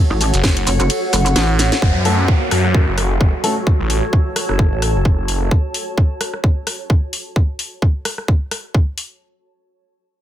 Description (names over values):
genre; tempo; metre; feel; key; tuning
bass house; 130 BPM; 4/4; swing 56% on 16ths; F# minor; A4 = 438 Hz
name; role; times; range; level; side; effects
granular cloud pad; texture; 0.0-5.5 s; F#4 to A5; -24 LUFS; equal; built-in reverb, sidechain pumping
pulsing pluck wobble bass; bass; 0.1-1.3 s; F#1 to A1; -16 LUFS; equal; chorus, overdrive, sidechain pumping
garage drum kit; drums; 0.2-9.1 s; hi-hat, ride cymbal, rim click, shaker, snare drum; -21 LUFS; equal; none
phased detuned saw bass; bass; 0.3-5.5 s; F#1 to F#2; -18 LUFS; equal; phaser, overdrive, sidechain pumping
electronic kick drum; drums; 0.4-8.8 s; none; -14 LUFS; equal; none
downlifter; sound effects; 1.8-5.5 s; none; -26 LUFS; equal; none
dark baby grand piano; stabs; 2.1-3.5 s; A3 to A4; -23 LUFS; left 2 dB; sidechain pumping, low-pass filter, digital delay
room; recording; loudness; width
little or no reverb; none; -14 LUFS; side -12 dB against mid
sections
0.0-1.8 A section; 1.8-9.2 B section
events
drop 0.0-1.8; kick drops out 0.9-1.8; drum fill 1.6; filter sweep on detuned saw bass 1.8-5.5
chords
0.0 F#m